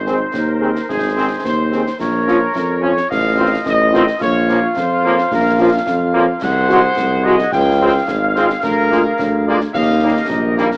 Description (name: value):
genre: military-style march for wind band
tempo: 108 BPM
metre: 2/4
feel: straight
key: Ab major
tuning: A4 = 438 Hz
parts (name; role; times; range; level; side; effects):
- dark trumpet section; melody; 0.0-10.8 s; Ab4 to G5; -19 LUFS; equal; none
- warm woodwind section; second line; 0.0-10.7 s; Eb4 to Gb5; -20 LUFS; equal; none
- mellow tuba; bass; 0.0-10.7 s; Ab1 to F2; -18 LUFS; equal; none
- mellow French horn section; accompaniment; 0.1-10.7 s; G3 to Ab4; -18 LUFS; equal; none
- warm trombone section; sustained chords; 0.1-10.7 s; Eb3 to Db4; -22 LUFS; equal; none
- concert snare drum, concert bass drum and clash cymbals; drums; 0.1-10.8 s; none; -28 LUFS; equal; none
room: light reverb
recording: AM radio sound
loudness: -13 LUFS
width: side -28 dB against mid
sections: 0.0-10.8 A section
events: none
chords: 0.0 Ab; 2.0 Bbm; 3.1 F7/A; 4.2 Bbm; 6.4 Ab7/C; 7.5 Dbmaj7; 8.6 Bb7/D; 9.8 Eb